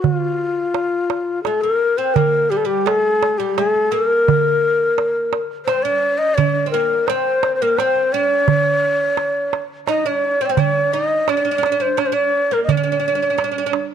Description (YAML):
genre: Arabic maqam ensemble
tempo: 86 BPM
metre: 3/4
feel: straight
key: unclear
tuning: A4 = 440 Hz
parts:
  - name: breathy mellow ney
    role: melody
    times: 0.0-13.8 s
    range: F4 to Eb5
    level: -17 LUFS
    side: left 2 dB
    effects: none
  - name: darbuka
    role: percussion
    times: 0.0-13.9 s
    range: none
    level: -20 LUFS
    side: right 10 dB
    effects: none
  - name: oud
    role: second line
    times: 1.5-13.7 s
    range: G3 to Eb4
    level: -24 LUFS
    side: right 13 dB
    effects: none
room: light reverb, studio reverb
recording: 1960s-style stereo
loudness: -16 LUFS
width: side -8 dB against mid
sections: 0.0-2.2 A section; 2.2-13.9 B section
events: none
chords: none